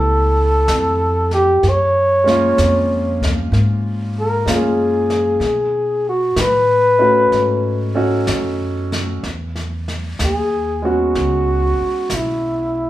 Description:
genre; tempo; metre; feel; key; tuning
jazz ballad; 63 BPM; 4/4; swing 67% on 8ths; unclear; A4 = 440 Hz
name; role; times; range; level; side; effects
breathy flugelhorn; melody; 0.0-12.9 s; E4 to Db5; -16 LUFS; equal; none
warm concert grand piano; accompaniment; 0.0-12.9 s; Ab3 to A4; -21 LUFS; right 1 dB; none
upright bass; bass; 0.0-12.9 s; B1 to B2; -21 LUFS; equal; none
jazz brush drum kit; drums; 0.7-12.9 s; brushed snare drum, hi-hat, kick drum, snare drum; -26 LUFS; left 1 dB; none
room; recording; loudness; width
moderate large studio reverb, RT60 0.9 s; band playing live in one room; -14 LUFS; side -14 dB against mid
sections
0.0-12.9 A section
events
flugelhorn solo 0.0-12.9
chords
0.0 Db7alt; 1.6 Gbmaj9; 5.4 B9; 9.2 E69

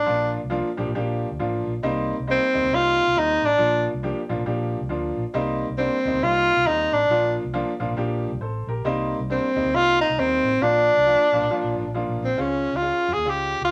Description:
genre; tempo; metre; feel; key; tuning
uptempo 1960s-style soul; 136 BPM; 4/4; swing 61% on 8ths; Bb major; A4 = 440 Hz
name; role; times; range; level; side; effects
breathy tenor saxophone; melody; 0.0-13.7 s; C4 to Ab4; -22 LUFS; equal; none
vintage muted fingered electric bass; bass; 0.0-13.7 s; A1 to F2; -33 LUFS; equal; none
bright upright piano; accompaniment; 0.1-13.6 s; F3 to C5; -29 LUFS; equal; none
room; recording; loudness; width
moderate club reverb, RT60 0.7 s; none; -22 LUFS; mono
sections
0.0-12.4 A section; 12.4-13.7 B section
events
none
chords
0.1 Bb; 1.8 Cm7; 3.6 Bb; 5.3 Cm7; 7.1 Bb; 8.9 Cm7; 10.6 Bb; 12.4 Db

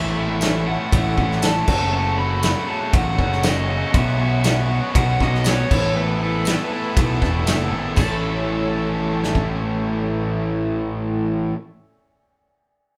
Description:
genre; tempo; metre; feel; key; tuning
indie rock; 119 BPM; 4/4; straight; A major; A4 = 440 Hz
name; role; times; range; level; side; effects
raw garage guitar; melody; 0.0-11.5 s; A4 to B5; -29 LUFS; equal; overdrive
lush unison pad; sustained chords; 0.0-11.5 s; A3 to C#6; -37 LUFS; equal; none
distorted electric guitar; riff; 0.0-11.6 s; F#2 to A4; -27 LUFS; equal; overdrive
distorted electric guitar; riff; 0.0-11.6 s; F#2 to A4; -31 LUFS; equal; distortion
growling picked electric bass; bass; 0.0-11.5 s; E1 to B1; -26 LUFS; equal; overdrive
loose indie drum kit; drums; 0.4-9.5 s; crash cymbal, kick drum, ride cymbal, snare drum; -24 LUFS; equal; none
tambourine; percussion; 0.4-8.2 s; none; -37 LUFS; equal; none
room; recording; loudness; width
wet studio reverb, RT60 0.6 s; band playing live in one room; -20 LUFS; mono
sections
0.0-8.0 A section; 8.0-12.0 B section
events
none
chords
0.0 A6; 1.7 F#m; 3.9 Bsus2; 5.7 Asus2; 8.0 A

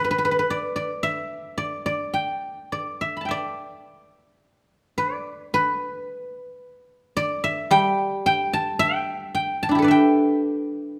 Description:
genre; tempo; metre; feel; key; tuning
chinese traditional, Chinese solo plucked strings; 54 BPM; 2/4; rubato; G gong mode; A4 = 440 Hz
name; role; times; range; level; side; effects
guzheng; solo; 0.0-11.0 s; G3 to B5; -24 LUFS; equal; none
room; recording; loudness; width
light reverb; none; -24 LUFS; mono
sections
0.0-3.3 A section; 3.3-11.0 B section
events
none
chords
none

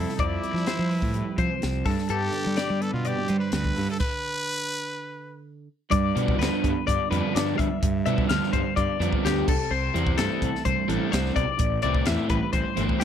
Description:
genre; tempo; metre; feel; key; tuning
math rock and midwest emo; 126 BPM; 4/4; straight; unclear; A4 = 440 Hz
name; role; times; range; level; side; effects
growling trumpet; melody; 0.0-5.4 s; E4 to B4; -30 LUFS; equal; slapback echo
twelve-string electric guitar; accompaniment; 0.0-13.0 s; E2 to G4; -30 LUFS; right 8 dB; wide subtle chorus
twelve-string electric guitar; arpeggios; 0.0-13.0 s; G4 to F5; -29 LUFS; left 11 dB; spring reverb
fuzz fingered electric bass; bass; 0.0-12.9 s; G1 to G3; -28 LUFS; equal; overdrive
crisp fusion drum kit; drums; 0.1-13.0 s; crash cymbal, hi-hat, kick drum, snare drum; -28 LUFS; equal; none
crunchy overdriven guitar; riff; 6.2-13.0 s; C3 to E4; -28 LUFS; equal; none
room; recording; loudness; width
little or no reverb; dry, close 1970s-style studio recording; -22 LUFS; side -9 dB against mid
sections
0.0-5.9 A section; 5.9-13.0 B section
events
stop 4.0-5.9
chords
0.0 Fmaj9; 1.9 Gadd9; 5.9 G7; 9.5 C6; 11.6 Am7

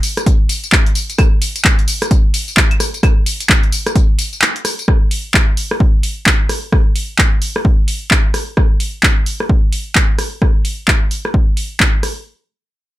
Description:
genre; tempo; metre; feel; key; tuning
UK garage; 130 BPM; 4/4; swing 61% on 16ths; none; none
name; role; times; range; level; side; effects
punchy analog drum machine; drums; 0.0-12.1 s; claves, handclaps, hi-hat, rim click, tambourine; -16 LUFS; equal; none
electronic kick drum; drums; 0.3-11.9 s; none; -13 LUFS; equal; none
room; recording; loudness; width
little or no reverb; none; -12 LUFS; side -16 dB against mid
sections
0.0-4.9 A section; 4.9-12.3 B section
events
drop 0.0-4.9; kick drops out 4.4-4.9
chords
none

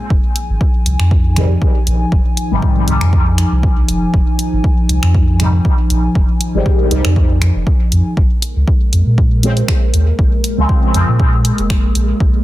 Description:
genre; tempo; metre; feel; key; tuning
dub techno; 119 BPM; 4/4; swing 53% on 16ths; unclear; A4 = 440 Hz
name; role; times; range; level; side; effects
dark analog pad; sustained chords; 0.0-12.4 s; F3 to Ab5; -22 LUFS; equal; chorus, sidechain pumping
soft dub sub bass; bass; 0.1-12.3 s; F1 to Bb2; -14 LUFS; equal; sidechain pumping
electronic kick drum; drums; 0.1-12.3 s; none; -14 LUFS; equal; none
deep house drum kit; drums; 0.4-12.1 s; finger snaps, hi-hat; -22 LUFS; equal; soft clipping on snare
resonant sweep polysynth; stabs; 1.4-11.1 s; Ab2 to C4; -20 LUFS; left 1 dB; chorus, phaser, sidechain pumping, dub echo
wind-like tuned noise texture; texture; 8.5-12.4 s; Ab3; -28 LUFS; right 2 dB; built-in reverb, sidechain pumping
room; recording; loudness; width
digital ambience; dense, heavily limited modern master; -11 LUFS; side -16 dB against mid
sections
0.0-8.2 A section; 8.2-12.4 A section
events
none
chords
0.1 Fm7; 8.2 Bbm7

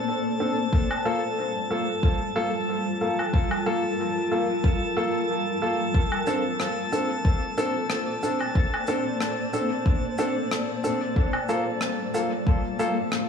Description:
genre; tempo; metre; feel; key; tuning
ambient dub; 92 BPM; 4/4; swing 55% on 16ths; G minor; A4 = 438 Hz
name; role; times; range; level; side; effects
granular cloud pad; sustained chords; 0.0-13.3 s; G3 to D5; -28 LUFS; left 1 dB; built-in reverb
drifting glass-harmonics texture; texture; 0.0-13.3 s; A5; -33 LUFS; left 1 dB; chorus, built-in reverb
warm upright piano; stabs; 0.4-12.9 s; Bb3 to A4; -28 LUFS; equal; dub echo
electronic kick drum; drums; 0.7-12.6 s; none; -22 LUFS; left 1 dB; none
woodblock, shaker and rim click; drums; 0.9-13.3 s; none; -32 LUFS; left 1 dB; dub echo
room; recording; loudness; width
moderate echo chamber reverb, RT60 2.3 s; small room ambience; -23 LUFS; side -6 dB against mid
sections
0.0-13.3 A section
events
none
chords
0.0 Bbmaj9; 0.7 Gm9; 5.9 Bbmaj9; 11.2 Gm9

